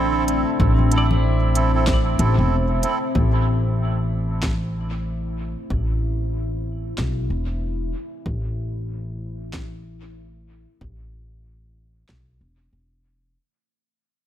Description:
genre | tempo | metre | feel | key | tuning
ambient dub | 94 BPM | 4/4 | swing 60% on 16ths | A minor | A4 = 443 Hz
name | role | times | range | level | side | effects
deep dark ambient pad | sustained chords | 0.0-13.4 s | A3 to E5 | -28 LUFS | equal | chorus, built-in reverb, vintage 12-bit sampler grit
pedal steel guitar | arpeggios | 0.0-3.5 s | C4 to D5 | -30 LUFS | left 4 dB | tape echo
melodica | stabs | 0.0-3.0 s | C4 to A4 | -27 LUFS | right 4 dB | dub echo
upright bass | bass | 0.0-13.3 s | E1 to B1 | -22 LUFS | equal | tube saturation
organic electronic drum kit | drums | 0.3-12.2 s | congas, hi-hat, snare drum | -31 LUFS | left 1 dB | dub echo
electronic kick drum | drums | 0.6-12.2 s | none | -25 LUFS | equal | overdrive
room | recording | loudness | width
light reverb | none | -19 LUFS | side -11 dB against mid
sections
0.0-3.1 A section; 3.1-13.4 B section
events
fade-out 3.1-13.4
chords
0.0 Am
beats
| 0.60 1.24 1.87 2.51 | 3.15 3.79 4.43 5.07 | 5.70 6.34 6.98 7.62 | 8.26 8.89 9.53 10.17 | 10.81 11.45 12.09 12.72

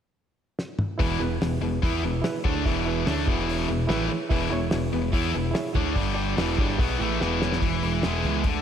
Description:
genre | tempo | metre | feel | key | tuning
classic rock | 145 BPM | 4/4 | straight | E major | A4 = 440 Hz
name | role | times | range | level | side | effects
cloth-damped thuddy drum kit | drums | 0.6-8.5 s | hi-hat, kick drum, snare drum, toms | -28 LUFS | equal | none
barky reed electric piano | accompaniment | 1.0-7.6 s | D4 to D5 | -32 LUFS | right 5 dB | overdrive, slapback echo
crunchy overdriven guitar | riff | 1.0-8.6 s | E2 to E4 | -30 LUFS | right 10 dB | none
tight distorted guitar | riff | 1.0-8.6 s | E2 to E4 | -28 LUFS | left 9 dB | distortion, slapback echo
deep dub picked electric bass | bass | 1.0-8.6 s | E1 to E2 | -30 LUFS | equal | none
picked steel-string acoustic guitar | accompaniment | 7.6-8.6 s | E2 to E4 | -36 LUFS | right 3 dB | slapback echo
room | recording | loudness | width
moderate lush hall reverb, RT60 2.2 s | big arena sound | -23 LUFS | side -8 dB against mid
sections
1.0-7.6 A section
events
drum fill 0.6-1.0, 7.2-7.6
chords
0.0 N.C.; 1.0 E; 6.0 G5; 6.4 E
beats
0.16 0.58 | 0.99 1.41 1.82 2.23 | 2.65 3.06 3.48 3.89 | 4.30 4.72 5.13 5.54 | 5.96 6.37 6.79 7.20 | 7.62 8.03 8.45

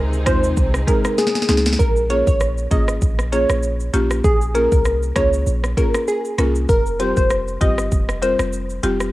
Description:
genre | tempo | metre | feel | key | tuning
dancehall | 98 BPM | 4/4 | swing 56% on 16ths | Bb dorian | A4 = 440 Hz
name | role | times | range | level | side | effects
warm studio string section | sustained chords | 0.0-1.8 s | C3 to Ab4 | -30 LUFS | equal | sidechain pumping, cassette tape
clean 808-style bass | bass | 0.0-9.1 s | F1 to Eb2 | -22 LUFS | equal | none
afro-pop drum kit | drums | 0.1-9.1 s | hi-hat, kick drum, rim click, shaker, snare drum | -20 LUFS | equal | cassette tape
glassy wavetable pluck | melody | 0.3-8.3 s | Ab4 to Eb5 | -20 LUFS | equal | chorus, cassette tape
buzzing marimba with medium hard mallets | accompaniment | 0.3-9.0 s | G3 to Bb4 | -24 LUFS | left 1 dB | cassette tape
room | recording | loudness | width
little or no reverb | home recording on cassette | -16 LUFS | side -17 dB against mid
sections
0.0-1.8 A section; 1.8-9.1 B section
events
drum fill 1.2-1.8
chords
0.0 Ab; 1.8 Bbm7; 6.7 Fsus2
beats
0.57 1.18 | 1.79 2.41 3.02 3.63 | 4.24 4.86 5.47 6.08 | 6.69 7.30 7.92 8.53

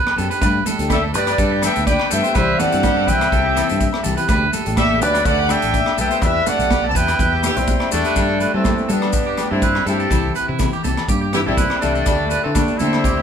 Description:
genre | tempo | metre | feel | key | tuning
highlife guitar band | 124 BPM | 4/4 | straight | G major | A4 = 440 Hz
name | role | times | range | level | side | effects
electric guitar at the edge of break-up | arpeggios | 0.0-13.2 s | E4 to C5 | -23 LUFS | right 4 dB | none
tight funk drum kit | drums | 0.1-13.2 s | hi-hat, kick drum, rim click | -23 LUFS | equal | none
agogo bells | percussion | 0.1-13.0 s | none | -32 LUFS | left 8 dB | none
picked steel-string acoustic guitar | accompaniment | 0.2-13.0 s | E3 to G4 | -27 LUFS | left 4 dB | none
fingered electric bass | bass | 0.2-13.2 s | A1 to G3 | -22 LUFS | equal | none
congas | percussion | 0.4-13.1 s | none | -27 LUFS | right 3 dB | none
maracas | percussion | 0.4-13.2 s | none | -32 LUFS | left 6 dB | none
bright horn section | melody | 0.9-13.2 s | A3 to A5 | -19 LUFS | left 1 dB | none
edgy alto saxophone | second line | 0.9-13.2 s | E3 to D4 | -27 LUFS | left 3 dB | none
room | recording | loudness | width
moderate large studio reverb, RT60 1.1 s | band playing live in one room | -15 LUFS | side -7 dB against mid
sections
0.0-8.2 A section; 8.2-13.2 B section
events
none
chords
0.4 Gsus2; 2.4 C; 4.3 Dsus4; 6.2 Em7; 8.2 Gsus2; 10.1 C; 12.1 Dsus4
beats
| 0.42 0.90 1.39 1.87 | 2.35 2.84 3.32 3.80 | 4.29 4.77 5.25 5.74 | 6.22 6.71 7.19 7.68 | 8.16 8.65 9.14 9.62 | 10.11 10.60 11.09 11.58 | 12.07 12.56 13.05

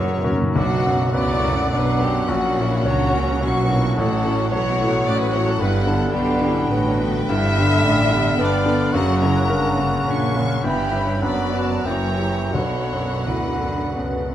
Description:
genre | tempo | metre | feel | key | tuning
classical, romantic movement for piano and orchestra | 83-115 BPM | 3/4 | rubato | B minor | A4 = 441 Hz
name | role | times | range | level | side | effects
bright grand piano | melody | 0.0-14.3 s | A1 to D5 | -23 LUFS | left 2 dB | none
clear chamber violin section | melody | 0.0-14.3 s | C#5 to C#6 | -34 LUFS | left 1 dB | none
mellow clarinet | second line | 0.0-14.3 s | B3 to A#4 | -30 LUFS | equal | none
mellow hollow concert flute | second line | 0.0-14.3 s | B4 to D6 | -30 LUFS | left 2 dB | none
clear bassoon | accompaniment | 0.0-14.3 s | C#3 to F#3 | -29 LUFS | right 2 dB | none
rich chamber viola section | accompaniment | 0.0-14.3 s | G3 to G4 | -28 LUFS | right 1 dB | none
clear chamber double bass section | bass | 0.0-14.3 s | F#1 to F#2 | -27 LUFS | right 3 dB | none
timpani | percussion | 0.0-0.5 s | F#2 | -26 LUFS | equal | none
clear oboe | second line | 0.6-14.3 s | F5 to G5 | -29 LUFS | right 2 dB | none
rich chamber violin section | second line | 0.6-14.0 s | E4 to E5 | -27 LUFS | left 2 dB | none
mellow French horn section | sustained chords | 0.6-14.3 s | F3 to F#4 | -34 LUFS | left 4 dB | none
clear studio cello section | bass | 0.6-14.3 s | F#2 to D3 | -26 LUFS | right 2 dB | none
room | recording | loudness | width
light reverb | close, detailed microphones | -17 LUFS | side -11 dB against mid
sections
0.6-14.3 A section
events
timpani fill 0.0-0.6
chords
0.0 F#; 0.6 Bm; 2.3 F#/A#; 4.0 F#m/A; 5.6 Gmaj7; 7.3 G7; 8.9 F#; 10.6 Em/G; 11.2 Bm/F#; 11.9 F#7b9; 12.5 Bm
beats
| 0.56 1.15 1.73 | 2.30 2.85 3.41 | 3.96 4.52 5.07 | 5.60 6.13 6.70 | 7.30 7.85 8.39 | 8.94 9.50 10.07 | 10.65 11.23 11.85 | 12.53 13.26 13.95

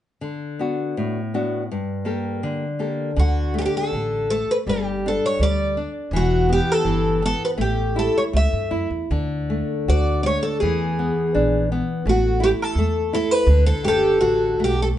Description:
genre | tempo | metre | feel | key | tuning
fado-style ballad | 77-86 BPM | 2/4 | rubato | D major | A4 = 440 Hz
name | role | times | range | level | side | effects
nylon-string guitar | accompaniment | 0.2-15.0 s | G2 to A4 | -24 LUFS | left 2 dB | none
picked twelve-string acoustic guitar | melody | 3.2-14.9 s | F#4 to E5 | -21 LUFS | equal | none
upright bass | bass | 3.2-14.9 s | E1 to G2 | -22 LUFS | right 1 dB | none
room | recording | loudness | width
moderate studio reverb, RT60 0.8 s | band playing live in one room, nothing above 10.6 kHz | -19 LUFS | side -12 dB against mid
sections
0.2-3.2 A section; 3.2-15.0 B section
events
none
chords
0.2 D6; 1.7 Gmadd9; 3.2 D5; 4.7 G5; 6.1 Em; 7.6 A5; 9.1 D; 10.6 E7; 12.1 A5; 13.5 D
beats
| 0.21 0.96 | 1.69 2.42 | 3.17 3.93 | 4.67 5.40 | 6.12 6.84 | 7.58 8.33 | 9.10 9.87 | 10.62 11.34 | 12.05 12.76 | 13.47 14.21

